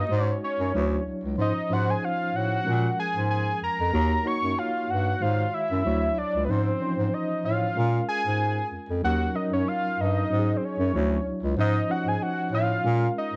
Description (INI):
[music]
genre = lush 1970s-style soul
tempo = 94 BPM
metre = 4/4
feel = swing 54% on 16ths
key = Db major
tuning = A4 = 442 Hz
[part]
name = fat analog lead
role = melody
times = 0.0-13.4 s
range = Cb5 to Db6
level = -30 LUFS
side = equal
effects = chorus
[part]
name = mellow reed electric piano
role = accompaniment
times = 0.0-13.4 s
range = Eb3 to Eb5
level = -33 LUFS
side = equal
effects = fast tremolo
[part]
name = mellow bass clarinet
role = bass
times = 0.0-13.4 s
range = C#2 to Bb2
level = -28 LUFS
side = equal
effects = none
[sound]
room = light reverb, small room ambience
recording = none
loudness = -26 LUFS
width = mono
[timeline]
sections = 0.0-13.4 A section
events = none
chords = 0.1 Ab7sus4; 0.7 Dmaj9; 1.4 Dbmaj9/Ab; 2.7 Bbm7; 3.9 Ebm7; 5.2 Ab7sus4; 5.8 Dmaj9; 6.5 Dbmaj9/Ab; 7.8 Bbm7; 9.0 Ebm7; 10.3 Ab7sus4; 10.9 Dmaj9; 11.6 Dbmaj9/Ab; 12.8 Bbm7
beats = | 0.10 0.74 1.38 2.02 | 2.66 3.30 3.94 4.57 | 5.21 5.85 6.48 7.12 | 7.75 8.39 9.03 9.66 | 10.30 10.93 11.57 12.21 | 12.84